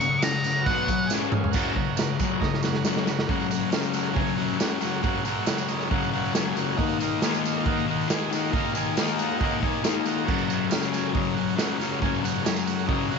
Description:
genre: garage rock duo or trio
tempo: 137 BPM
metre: 4/4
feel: straight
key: F# major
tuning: A4 = 440 Hz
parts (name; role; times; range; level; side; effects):
- octave-fuzz lead guitar; melody; 0.0-1.1 s; F#5 to C#6; -26 LUFS; equal; distortion
- combo organ; sustained chords; 0.0-13.2 s; F#4 to G#5; -31 LUFS; right 15 dB; spring reverb
- fuzz guitar; riff; 0.0-13.2 s; F#2 to D#4; -26 LUFS; left 12 dB; distortion
- raw garage drum kit; drums; 0.0-13.2 s; crash cymbal, hi-hat, kick drum, snare drum, toms; -27 LUFS; right 3 dB; none
- tambourine; percussion; 0.0-13.2 s; none; -38 LUFS; right 18 dB; none
room: light reverb, small room reverb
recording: 1960s-style stereo with parts hard left and right, nothing above 7.8 kHz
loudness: -23 LUFS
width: side -5 dB against mid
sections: 0.0-1.5 A section; 1.5-3.3 B section; 3.3-13.2 C section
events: lead electric guitar solo 0.0-1.5; drum fill 1.1-1.5, 2.4-3.3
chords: 0.0 F#; 0.7 B5; 1.1 C#5; 1.5 F#; 6.8 D#m; 10.3 F#

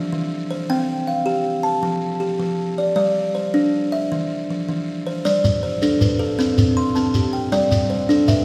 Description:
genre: southern african traditional, mbira-style interlocking cycle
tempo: 105 BPM (dotted quarters)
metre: 12/8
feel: straight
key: G mixolydian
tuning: A4 = 438 Hz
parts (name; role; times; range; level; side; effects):
- buzzing kalimba; arpeggios; 0.0-8.4 s; E3 to C6; -21 LUFS; equal; none
- shekere; percussion; 5.3-8.4 s; none; -24 LUFS; equal; none
- kalimba; arpeggios; 5.4-8.4 s; G3 to A5; -27 LUFS; equal; none
room: wet church reverb, RT60 3.3 s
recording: recorded in a church or concert hall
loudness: -20 LUFS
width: mono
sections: 0.0-5.3 A section; 5.3-8.4 A section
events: none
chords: 0.0 Cadd11/E; 0.7 C5; 1.8 F; 3.0 G5; 4.1 Cadd11/E; 5.3 G; 6.4 C5; 7.5 G

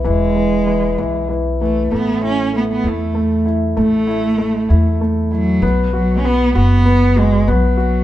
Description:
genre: six-eight pop ballad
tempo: 65 BPM (dotted quarters)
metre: 6/8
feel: straight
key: unclear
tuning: A4 = 440 Hz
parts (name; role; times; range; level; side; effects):
- clear grand piano; accompaniment; 0.0-8.0 s; E3 to F#4; -18 LUFS; left 2 dB; none
- warm cello; melody; 0.1-8.0 s; F#3 to C#4; -18 LUFS; right 2 dB; none
- upright bass; bass; 0.1-8.0 s; E1 to E2; -18 LUFS; equal; none
room: moderate stone room reverb, RT60 1.1 s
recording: band playing live in one room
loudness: -13 LUFS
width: side -13 dB against mid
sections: 0.0-8.0 A section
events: none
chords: 0.0 E; 1.9 A5; 5.6 B5

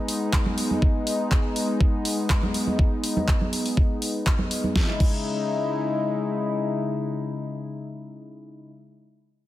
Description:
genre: progressive house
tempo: 122 BPM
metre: 4/4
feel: straight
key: C# minor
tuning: A4 = 441 Hz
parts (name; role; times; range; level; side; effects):
- warm analog pad; sustained chords; 0.0-8.7 s; C#3 to E4; -26 LUFS; left 2 dB; chorus, sidechain pumping
- pop drum kit; drums; 0.1-5.2 s; crash cymbal, handclaps, hi-hat, snare drum; -30 LUFS; equal; overdrive, sidechain pumping on hats, sidechain pumping on cymbals
- electronic kick drum; drums; 0.3-5.2 s; none; -22 LUFS; equal; overdrive
- congas; percussion; 0.5-4.7 s; none; -29 LUFS; right 2 dB; sidechain pumping on perc
room: little or no reverb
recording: none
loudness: -22 LUFS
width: side -14 dB against mid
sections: 0.0-4.8 A section; 4.8-8.7 B section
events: none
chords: 0.0 B6; 4.8 C#madd9

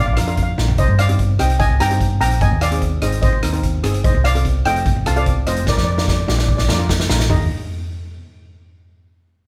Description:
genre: calypso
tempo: 147 BPM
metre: 4/4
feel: straight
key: Eb major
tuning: A4 = 440 Hz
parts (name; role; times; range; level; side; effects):
- steel pan; melody; 0.0-7.5 s; Bb4 to Bb5; -24 LUFS; equal; none
- hollow-body short-scale fingered electric bass; bass; 0.0-7.5 s; F1 to G2; -20 LUFS; equal; none
- steel pan; accompaniment; 0.2-7.5 s; C4 to C5; -30 LUFS; equal; none
- street-band drum kit; drums; 0.2-7.4 s; hi-hat, kick drum, rim click, snare drum, toms; -22 LUFS; equal; none
room: moderate studio ambience, RT60 0.5 s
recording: band playing live in one room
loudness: -17 LUFS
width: mono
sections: 0.0-7.3 A section; 7.3-8.9 B section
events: drum fill 0.6, 5.7-7.3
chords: 0.0 Bb; 0.8 Cm; 2.4 Abmaj7; 4.0 F7; 5.7 Bb; 7.3 Eb

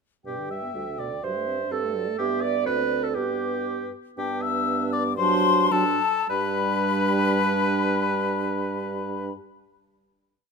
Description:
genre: quick classical-period movement for wind quintet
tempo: 101-127 BPM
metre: 2/4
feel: rubato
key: G major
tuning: A4 = 440 Hz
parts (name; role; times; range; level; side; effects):
- mellow hollow silver concert flute; melody; 0.2-9.3 s; B4 to E6; -27 LUFS; left 9 dB; none
- warm oboe; second line; 0.3-9.3 s; G4 to E5; -30 LUFS; left 4 dB; none
- dark French horn; accompaniment; 0.3-9.3 s; B2 to D4; -30 LUFS; right 2 dB; none
- warm clarinet; accompaniment; 0.3-9.3 s; D4 to E5; -28 LUFS; right 11 dB; none
- mellow bassoon; bass; 0.3-9.3 s; D2 to G2; -31 LUFS; right 3 dB; none
room: moderate recital hall reverb, RT60 1.6 s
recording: close, detailed microphones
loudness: -22 LUFS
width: side -4 dB against mid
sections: 0.3-4.2 A section; 4.2-6.3 coda; 6.3-8.6 final chord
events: slowing down 3.7-6.3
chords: 0.3 G; 1.2 D7/G; 2.2 G; 2.7 Bm7/D; 3.2 G; 5.2 D7/G; 6.3 G

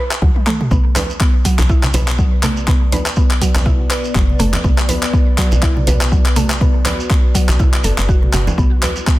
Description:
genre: afro house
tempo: 122 BPM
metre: 4/4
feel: swing 57% on 16ths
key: B minor pentatonic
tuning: A4 = 440 Hz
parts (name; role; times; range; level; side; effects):
- mallet-like synth pluck; arpeggios; 0.0-9.2 s; F#3 to B4; -23 LUFS; equal; chorus, sidechain pumping, digital delay
- deep house drum kit; drums; 0.1-9.2 s; handclaps, hi-hat, toms; -21 LUFS; left 1 dB; none
- woody FM bass; bass; 0.2-8.7 s; F#1 to D2; -18 LUFS; equal; sidechain pumping
- electronic kick drum; drums; 0.2-9.2 s; none; -14 LUFS; equal; none
- dark analog pad; sustained chords; 1.5-9.2 s; G3 to D5; -26 LUFS; left 1 dB; chorus, sidechain pumping
- congas; percussion; 0.7-8.9 s; none; -22 LUFS; right 1 dB; none
- shekere; percussion; 0.7-9.2 s; none; -29 LUFS; right 4 dB; none
room: digital ambience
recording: dense, heavily limited modern master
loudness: -12 LUFS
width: side -17 dB against mid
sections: 0.0-9.2 A section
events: drum fill 0.3-0.7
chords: 0.0 Bm7; 8.6 Emadd9

